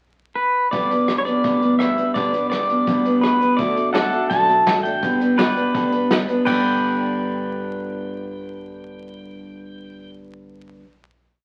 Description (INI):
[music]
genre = honky-tonk and classic country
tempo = 167 BPM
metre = 4/4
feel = straight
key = G major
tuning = A4 = 440 Hz
[part]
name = pedal steel guitar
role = melody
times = 0.4-10.1 s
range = B4 to A5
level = -23 LUFS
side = equal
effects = none
[part]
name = picked steel-string acoustic guitar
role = accompaniment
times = 0.7-10.9 s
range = G2 to B4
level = -24 LUFS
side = equal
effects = none
[part]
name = upright bass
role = bass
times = 0.7-10.8 s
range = G1 to D2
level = -40 LUFS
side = equal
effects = none
[part]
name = vintage brush drum kit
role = drums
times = 0.7-6.5 s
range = crash cymbal, hi-hat, kick drum, rim click, snare drum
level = -28 LUFS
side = equal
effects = none
[part]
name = pedal steel guitar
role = sustained chords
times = 3.9-10.1 s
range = A4 to D5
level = -27 LUFS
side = equal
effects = none
[sound]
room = wet studio reverb, RT60 0.5 s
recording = very old 78 rpm record, vinyl crackle, faint mains hum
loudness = -19 LUFS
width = mono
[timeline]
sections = 0.0-0.7 pickup bar; 0.7-6.5 A section; 6.5-9.3 final chord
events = none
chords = 0.0 N.C.; 0.7 G; 3.6 D; 5.0 G